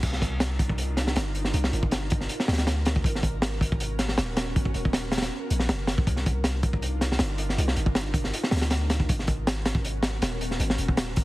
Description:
drum and bass, jungle; 159 BPM; 4/4; straight; A4 = 440 Hz
ethereal airy pad; sustained chords; 0.0-11.2 s; Cb4 to Bb4; -36 LUFS; right 1 dB; ensemble chorus, built-in reverb
long sustained 808-style bass; bass; 0.0-11.2 s; Eb1 to D2; -28 LUFS; equal
crunchy breakbeat drum kit; drums; 0.0-11.2 s; crash cymbal, hi-hat, kick drum, snare drum; -26 LUFS; equal
studio ambience; heavily compressed radio sound, vinyl crackle; -23 LUFS; side -18 dB against mid
0.0-11.2 A section
drop 0.0-11.2
0.0 Cm11; 3.0 Abm11; 6.1 Cm11; 9.1 Abm11

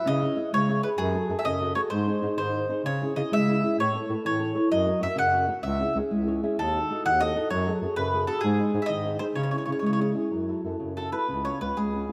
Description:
italian folk, Italian serenade; 129 BPM (dotted quarters); 6/8; rubato; C# minor; A4 = 440 Hz
mandolin; melody; 0.0-12.1 s; G#4 to F#5; -30 LUFS; equal
flamenco guitar; accompaniment; 0.0-12.1 s; C#3 to E5; -30 LUFS; equal
clear bass clarinet; bass; 0.1-12.1 s; C#2 to C#3; -34 LUFS; equal
moderate lush hall reverb, RT60 2.1 s; rough home demo mix; -26 LUFS; mono
0.0-10.3 A section; 10.3-12.1 B section
nylon-string guitar fill 6.1-6.6
0.1 C#m; 1.0 F#madd9; 1.9 G#; 2.8 C#m; 3.8 Aadd9; 4.7 F#; 5.6 C#m; 6.6 D#dim; 7.5 F#madd9; 8.4 G#; 9.4 C#m; 10.3 F#m7; 11.3 C#7

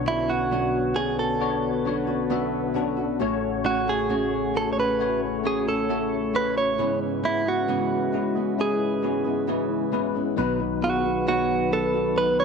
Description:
pop ballad; 67 BPM; 4/4; straight; A4 = 440 Hz
bell-like tine electric piano; accompaniment; 0.0-12.4 s; A1 to E5; -26 LUFS; left 13 dB; ensemble chorus
dark brass ensemble; sustained chords; 0.0-12.4 s; G#2 to C#5; -32 LUFS; right 2 dB
flamenco guitar; arpeggios; 0.0-12.4 s; G#2 to A4; -31 LUFS; right 16 dB
direct-recorded clean electric guitar; melody; 0.1-12.4 s; E4 to C#5; -25 LUFS; right 4 dB; spring reverb
light reverb; dry, close 1970s-style studio recording; -22 LUFS; side -5 dB against mid
0.0-10.4 A section; 10.4-12.4 B section
0.0 Bmadd9; 3.2 F#m/A; 6.8 C#m7/G#; 10.4 B

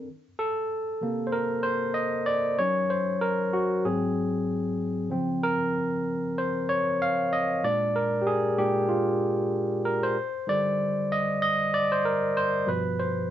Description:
soul; 95 BPM; 4/4; swing 58% on 16ths; A4 = 440 Hz
barky tine electric piano; solo; 0.0-13.3 s; G2 to F5; -24 LUFS; equal
moderate studio reverb, RT60 0.9 s; band playing live in one room, nothing above 7.7 kHz; -24 LUFS; side -11 dB against mid
0.1-13.3 A section
tine electric piano solo 0.1-13.3
0.1 Cm7; 2.6 Ebm7; 3.9 Ab7; 5.1 Dbmaj7; 7.6 Bb7; 10.2 Ebmaj7; 12.7 G7

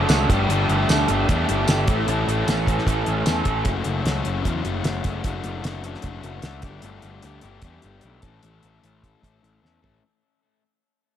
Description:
indie rock; 151 BPM; 4/4; straight; A4 = 435 Hz
crunchy overdriven guitar; riff; 0.0-10.0 s; F#2 to A4; -26 LUFS; left 7 dB; tape echo
raw garage guitar; riff; 0.0-3.7 s; A2 to A4; -26 LUFS; right 8 dB; overdrive, ensemble chorus, tape echo
fuzz picked electric bass; bass; 0.0-10.0 s; F#1 to E2; -25 LUFS; right 1 dB; overdrive
cloth-damped thuddy drum kit; drums; 0.1-9.9 s; hi-hat, kick drum, snare drum, tambourine, toms; -23 LUFS; equal
light reverb, studio ambience; echo-heavy mix; -20 LUFS; side -10 dB against mid
0.0-10.0 A section
fade-out 0.0-10.0; drum fill 9.6-10.0
0.3 Gsus2; 1.9 A; 3.7 F#m; 5.2 D/F#; 6.6 Gsus2; 8.2 A

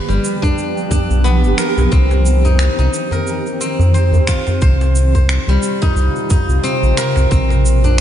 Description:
organic downtempo; 89 BPM; 4/4; swing 57% on 16ths; C minor; A4 = 444 Hz
granular cloud pad; sustained chords; 0.0-8.0 s; C3 to G4; -22 LUFS; right 2 dB; built-in reverb, sidechain pumping
steel-string zither; arpeggios; 0.0-8.0 s; G3 to C5; -19 LUFS; left 1 dB; low-pass filter, diffuse ambient delay
round analog bass; bass; 0.1-8.0 s; G1 to F2; -13 LUFS; equal; sidechain pumping
electronic shaker and finger snaps; drums; 0.1-8.0 s; -26 LUFS; right 1 dB
electronic kick drum; drums; 0.4-7.5 s; -14 LUFS; equal
djembe; percussion; 0.4-8.0 s; -24 LUFS; right 1 dB
light reverb; nothing above 10.4 kHz; -12 LUFS; side -10 dB against mid
0.0-8.0 A section
0.0 G7; 1.9 Cm; 4.6 F5/C; 7.3 Bb6

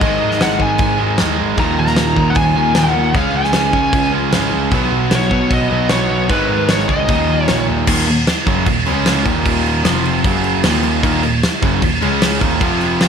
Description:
hard rock; 152 BPM; 4/4; straight; Eb minor; A4 = 440 Hz
high-gain lead guitar; melody; 0.0-7.6 s; Cb5 to Bb5; -19 LUFS; left 1 dB; distortion
crunchy overdriven guitar; riff; 0.0-13.1 s; Eb2 to Db4; -19 LUFS; right 9 dB
overdriven semi-hollow guitar; riff; 0.0-13.1 s; Eb2 to Db4; -21 LUFS; left 12 dB
tine electric piano; bass; 0.0-13.1 s; F1 to Ab2; -21 LUFS; equal; phaser
big rock drum kit; drums; 0.0-13.1 s; crash cymbal, kick drum, snare drum; -17 LUFS; equal
moderate plate reverb, RT60 1.2 s; bright 1980s-style digital production; -13 LUFS; side -7 dB against mid
0.0-7.9 A section; 7.9-13.1 B section
0.0 Ab5; 1.6 Ebm; 3.2 Db5; 4.7 B; 6.3 Abm; 7.1 Eb5; 7.9 Ebm; 8.9 Db5; 9.3 Eb5; 9.9 F5; 10.3 Gb5; 10.6 Ebm; 12.0 Db5; 12.4 Eb5

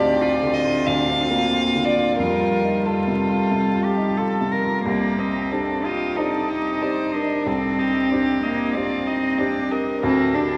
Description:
neoclassical piano and strings; 92 BPM; 4/4; rubato; C dorian; A4 = 445 Hz
rich violin; melody; 0.0-10.6 s; Eb4 to F5; -28 LUFS; equal
rich cello; second line; 0.0-10.6 s; Bb3 to Bb4; -26 LUFS; equal
clear upright piano; accompaniment; 0.0-10.6 s; C2 to D5; -27 LUFS; equal
warm viola; accompaniment; 0.0-10.6 s; G3 to Eb5; -29 LUFS; equal
wet church reverb, RT60 3.8 s; recorded in a church or concert hall, vinyl crackle, nothing above 10.4 kHz; -21 LUFS; mono
0.0-4.9 A section; 4.9-10.6 B section
0.0 Bbadd9/D; 2.2 Fadd9; 4.9 Cmadd9; 10.0 Bb6/D

